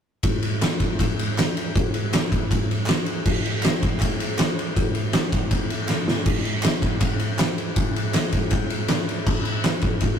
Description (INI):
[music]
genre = rock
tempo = 159 BPM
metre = 4/4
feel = straight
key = none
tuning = none
[part]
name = oversized low-tuned drum kit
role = drums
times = 0.2-10.1 s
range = crash cymbal, kick drum, ride cymbal, snare drum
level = -20 LUFS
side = equal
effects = none
[part]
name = group handclap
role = percussion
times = 0.6-10.1 s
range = none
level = -34 LUFS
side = equal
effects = none
[sound]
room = moderate booth ambience, RT60 0.3 s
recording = rough rehearsal-room recording, tube saturation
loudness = -20 LUFS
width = side -8 dB against mid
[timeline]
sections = 0.2-10.2 A section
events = drum fill 5.9-6.3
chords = none